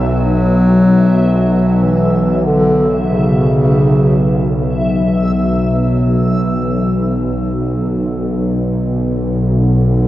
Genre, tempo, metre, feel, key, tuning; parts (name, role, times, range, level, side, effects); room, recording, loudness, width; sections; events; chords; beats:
dark ambient drone; free time; B minor; A4 = 440 Hz
dark bass clarinet; melody; 0.0-10.1 s; C#3 to F#3; -16 LUFS; equal; diffuse ambient delay
deep dark ambient pad; sustained chords; 0.0-10.1 s; barely audible
bowed-like drone; drone; 0.0-10.1 s; B1; -14 LUFS; equal; built-in reverb
backwards swelling texture; texture; 0.0-4.2 s; E5; -25 LUFS; equal; built-in reverb
wet cathedral reverb, RT60 5.5 s; worn, warbling old tape, cassette tape, warbly pitch drift; -12 LUFS; side -14 dB against mid
0.0-4.2 A section; 4.2-10.1 B section
0.0 Em/B; 4.2 Bm
free time